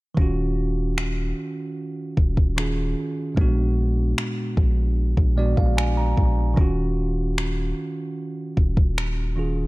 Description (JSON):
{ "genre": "contemporary R&B", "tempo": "75 BPM", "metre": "4/4", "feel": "straight", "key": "Eb minor", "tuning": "A4 = 445 Hz", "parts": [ { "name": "bell-like tine electric piano", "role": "accompaniment", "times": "0.1-9.7 s", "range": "Bb2 to Bb5", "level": "-26 LUFS", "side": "right 1 dB", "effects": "none" }, { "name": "long sustained 808-style bass", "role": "bass", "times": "0.2-9.7 s", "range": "Eb1 to Bb1", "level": "-23 LUFS", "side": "equal", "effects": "none" }, { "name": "smooth R&B drum kit", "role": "drums", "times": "0.2-9.2 s", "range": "finger snaps, kick drum", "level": "-22 LUFS", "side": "equal", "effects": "none" } ], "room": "little or no reverb", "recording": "dark, warm production", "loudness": "-20 LUFS", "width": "side -21 dB against mid", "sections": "0.2-9.7 A section", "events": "tine electric piano fill 5.0-6.6", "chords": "0.2 Ebm9; 3.4 Bb7b9b13; 6.6 Ebm9", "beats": "| 0.17 0.97 1.77 2.57 | 3.37 4.17 4.97 5.77 | 6.57 7.37 8.17 8.97" }